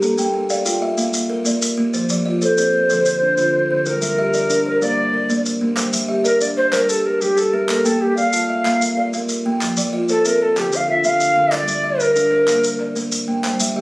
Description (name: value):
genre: southern african traditional, mbira-style interlocking cycle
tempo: 125 BPM (dotted quarters)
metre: 12/8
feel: straight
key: G dorian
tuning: A4 = 440 Hz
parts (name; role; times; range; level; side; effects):
- buzzing kalimba; arpeggios; 0.0-13.8 s; D3 to G5; -22 LUFS; equal; none
- marimba with soft mallets; arpeggios; 0.0-13.8 s; D3 to A5; -22 LUFS; equal; none
- maracas; percussion; 0.0-13.7 s; none; -24 LUFS; left 1 dB; none
- mellow Native American-style cedar flute; melody; 2.4-13.0 s; G4 to F5; -17 LUFS; equal; none
- group handclap; percussion; 5.8-13.6 s; none; -25 LUFS; equal; none
room: moderate small room reverb, RT60 0.5 s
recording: recorded on a phone in the room, studio reverb, compression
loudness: -15 LUFS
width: side -22 dB against mid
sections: 0.0-5.8 A section; 5.8-13.8 B section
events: none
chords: 0.0 Bb; 1.9 F; 2.9 Dm; 3.9 Gm; 7.7 Bb; 9.6 F; 10.6 Dm; 11.5 Gm; 12.5 Bb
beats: | 0.02 0.50 0.98 1.46 | 1.94 2.42 2.90 3.38 | 3.86 4.34 4.82 5.29 | 5.78 6.25 6.73 7.21 | 7.69 8.17 8.65 9.13 | 9.61 10.09 10.56 11.04 | 11.52 12.00 12.48 12.96 | 13.44